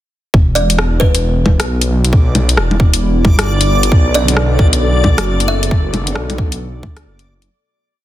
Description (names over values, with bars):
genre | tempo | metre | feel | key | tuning
future garage | 134 BPM | 4/4 | swing 62% on 16ths | E minor | A4 = 440 Hz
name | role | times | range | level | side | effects
swelling detuned saw bass | bass | 0.3-7.5 s | E1 to D2 | -15 LUFS | equal | sidechain pumping
electronic kick drum | drums | 0.3-6.9 s | none | -12 LUFS | equal | studio reverb
backwards swelling texture | texture | 2.2-7.5 s | D5 | -23 LUFS | left 1 dB | built-in reverb
kalimba | melody | 0.6-1.4, 4.2-6.1 s | B4 to E5 | -20 LUFS | right 1 dB | tape echo
garage drum kit | drums | 0.6-7.5 s | bongos, hi-hat, rim click | -17 LUFS | left 1 dB | studio reverb, soft clipping on snare
dark analog pad | sustained chords | 2.1-7.5 s | B3 to D5 | -23 LUFS | equal | chorus, sidechain pumping
felt-muted upright piano | accompaniment | 4.2-6.8 s | D3 to A4 | -24 LUFS | right 3 dB | vintage 12-bit sampler grit, sidechain pumping, ping-pong delay
room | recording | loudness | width
digital ambience | dense, heavily limited modern master | -11 LUFS | side -14 dB against mid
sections
0.3-7.5 groove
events
fade-out 5.1-7.5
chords
0.3 Em7; 3.9 Bm7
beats
| 0.34 0.79 1.23 1.68 | 2.13 2.58 3.02 3.47 | 3.92 4.37 4.82 5.26 | 5.71 6.16 6.61 7.05